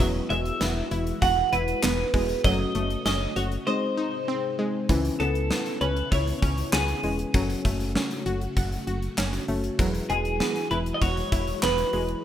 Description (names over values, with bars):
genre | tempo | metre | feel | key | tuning
synth-pop | 98 BPM | 4/4 | straight | unclear | A4 = 441 Hz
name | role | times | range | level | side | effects
twelve-string electric guitar | melody | 0.0-12.1 s | G#4 to F#5 | -28 LUFS | right 1 dB | wide subtle chorus, tape echo
muted felt-like synth keys | accompaniment | 0.0-12.2 s | G#3 to G#5 | -32 LUFS | left 2 dB | chorus
string machine, full ensemble | sustained chords | 0.0-12.2 s | B#2 to F#4 | -36 LUFS | equal | ensemble chorus
analog pluck | arpeggios | 0.0-12.2 s | E3 to F#5 | -33 LUFS | right 2 dB | chorus, tape echo
solid FM bass | bass | 0.0-12.1 s | E1 to C#2 | -29 LUFS | equal | none
gated 80s drum kit | drums | 0.0-12.2 s | handclaps, hi-hat, kick drum, snare drum | -28 LUFS | equal | none
room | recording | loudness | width
light reverb, studio reverb | rough home demo mix | -23 LUFS | side -10 dB against mid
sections
0.0-4.9 A section; 4.9-12.2 B section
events
silent gap 3.7-4.9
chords
0.0 Eadd9; 2.4 F#m; 3.7 G#; 4.9 C#m7; 7.3 F#m; 9.8 Eadd9